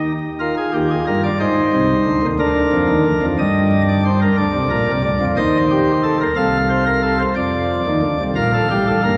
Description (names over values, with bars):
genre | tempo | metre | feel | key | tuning
classical, baroque-style 4-part fugue for pipe organ | 60 BPM (dotted quarters) | 6/8 | straight | Eb major | A4 = 440 Hz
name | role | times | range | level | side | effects
pipe organ, sparkling flutes | solo | 0.0-9.2 s | G1 to F5 | -17 LUFS | equal | none
room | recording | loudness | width
wet church reverb, RT60 3.4 s | vinyl crackle | -17 LUFS | mono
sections
0.4-8.4 A section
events
none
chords
0.4 Eb; 1.4 Cmadd9; 2.4 Bb/D; 3.4 Eb/G; 4.4 Bb; 5.4 Cm7/Eb; 6.4 F/C; 7.4 Csus24; 8.4 Gm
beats
| 0.40 1.40 | 2.40 3.39 | 4.38 5.37 | 6.37 7.37 | 8.37